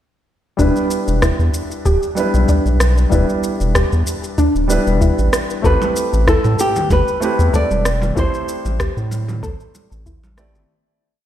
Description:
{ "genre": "sunset chillout", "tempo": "95 BPM", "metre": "4/4", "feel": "swing 54% on 16ths", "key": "E minor", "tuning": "A4 = 440 Hz", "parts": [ { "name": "warm concert grand piano", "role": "accompaniment", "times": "0.6-10.7 s", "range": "G3 to D5", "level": "-21 LUFS", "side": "equal", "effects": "auto-pan, digital delay" }, { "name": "soft round pluck", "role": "arpeggios", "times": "0.6-10.3 s", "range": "D4 to A4", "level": "-24 LUFS", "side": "left 1 dB", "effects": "lush chorus, digital delay" }, { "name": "round analog bass", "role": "bass", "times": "0.6-10.7 s", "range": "D1 to A2", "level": "-17 LUFS", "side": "equal", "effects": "none" }, { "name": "electronic kick drum", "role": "drums", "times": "0.6-10.2 s", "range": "none", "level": "-18 LUFS", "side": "equal", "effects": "none" }, { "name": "electronic shaker and rim click", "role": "drums", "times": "0.6-10.7 s", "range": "none", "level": "-23 LUFS", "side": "equal", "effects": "none" }, { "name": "nylon-string guitar", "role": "melody", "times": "5.7-10.0 s", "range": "G4 to D5", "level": "-20 LUFS", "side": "equal", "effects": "tape echo" }, { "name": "congas", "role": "percussion", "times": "5.8-10.7 s", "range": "none", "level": "-28 LUFS", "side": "right 1 dB", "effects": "none" } ], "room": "moderate recital hall reverb, RT60 1.5 s, small room ambience", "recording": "played on a big sound system in a bare room, stone room reverb", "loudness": "-14 LUFS", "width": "side -11 dB against mid", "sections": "0.6-10.7 groove", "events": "fade-out 7.3-10.7", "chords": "0.6 Em7; 5.6 Am9" }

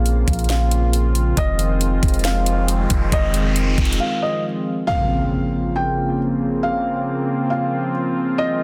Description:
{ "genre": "hip hop, atmospheric cloud-rap", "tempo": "137 BPM", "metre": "4/4", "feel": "half-time", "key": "Bb minor", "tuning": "A4 = 440 Hz", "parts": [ { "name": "felt-muted upright piano", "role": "melody", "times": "0.0-8.6 s", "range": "Eb5 to G5", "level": "-27 LUFS", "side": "equal", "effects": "tape echo" }, { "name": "warm analog pad", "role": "sustained chords", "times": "0.0-8.6 s", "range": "Db3 to F4", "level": "-24 LUFS", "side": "equal", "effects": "chorus, sidechain pumping" }, { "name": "soft 808-style bass", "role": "bass", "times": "0.0-4.0 s", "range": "F1 to Bb1", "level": "-21 LUFS", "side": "equal", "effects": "none" }, { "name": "trap drum kit", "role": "drums", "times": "0.1-4.0 s", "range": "hi-hat, kick drum, snare drum", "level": "-23 LUFS", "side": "equal", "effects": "none" }, { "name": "riser and impact", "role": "sound effects", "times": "2.4-6.6 s", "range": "none", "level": "-30 LUFS", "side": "equal", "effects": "none" } ], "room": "light reverb", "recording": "dense, heavily limited modern master", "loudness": "-20 LUFS", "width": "mono", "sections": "0.0-4.9 A section; 4.9-8.6 B section", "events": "riser 2.4-4.9; break 4.0-4.9; impact 4.9-6.6", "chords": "0.0 Bbmadd9; 1.4 Fm7; 4.9 Bbmadd9" }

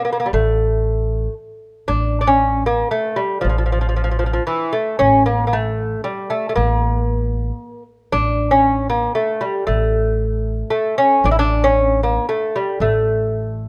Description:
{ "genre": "Persian modal ensemble", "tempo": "115 BPM", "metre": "3/4", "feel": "straight", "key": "A dastgah homayun", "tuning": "A4 = 439 Hz", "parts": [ { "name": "lute", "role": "melody", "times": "0.0-13.7 s", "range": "E3 to E4", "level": "-20 LUFS", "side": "equal", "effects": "none" }, { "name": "upright bass", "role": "bass", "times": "0.3-13.7 s", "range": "A1", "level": "-22 LUFS", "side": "equal", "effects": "none" } ], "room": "light reverb", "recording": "close, detailed microphones", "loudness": "-18 LUFS", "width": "mono", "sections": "0.0-1.9 A section; 1.9-13.7 B section", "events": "none", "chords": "none" }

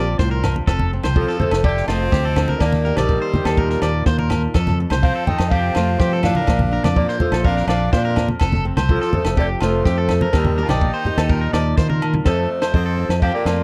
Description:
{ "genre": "highlife guitar band", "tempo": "124 BPM", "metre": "4/4", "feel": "straight", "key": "F mixolydian", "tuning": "A4 = 441 Hz", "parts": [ { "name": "electric guitar at the edge of break-up", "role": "melody", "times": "0.0-13.6 s", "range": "F4 to A5", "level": "-25 LUFS", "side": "equal", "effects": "none" }, { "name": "edgy tenor saxophone", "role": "second line", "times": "0.0-13.6 s", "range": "F3 to F4", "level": "-32 LUFS", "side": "equal", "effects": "none" }, { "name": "flamenco guitar", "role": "accompaniment", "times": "0.0-13.6 s", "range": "F2 to A4", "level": "-29 LUFS", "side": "equal", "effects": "none" }, { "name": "electric guitar at the edge of break-up", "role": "arpeggios", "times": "0.0-13.6 s", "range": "F4 to D5", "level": "-29 LUFS", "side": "equal", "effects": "spring reverb, slapback echo" }, { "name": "fingered electric bass", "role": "bass", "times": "0.0-13.6 s", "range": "F1 to F3", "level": "-23 LUFS", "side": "equal", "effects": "none" }, { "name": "compact cocktail drum kit", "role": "drums", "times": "0.2-13.6 s", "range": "kick drum, snare drum, toms", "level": "-22 LUFS", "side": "equal", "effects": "none" }, { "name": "agogo bells", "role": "percussion", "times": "0.4-13.6 s", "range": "none", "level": "-33 LUFS", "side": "equal", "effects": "none" }, { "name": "congas", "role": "percussion", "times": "0.4-12.2 s", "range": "none", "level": "-26 LUFS", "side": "equal", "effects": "none" } ], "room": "little or no reverb", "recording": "dry, close 1970s-style studio recording", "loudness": "-18 LUFS", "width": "mono", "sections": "0.0-12.3 A section; 12.3-13.6 B section", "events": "drum fill 11.8-12.3", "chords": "0.0 Bbadd9; 0.7 F; 2.6 Eb; 4.5 F; 6.5 Bbadd9; 8.4 F; 10.3 Eb; 12.3 F" }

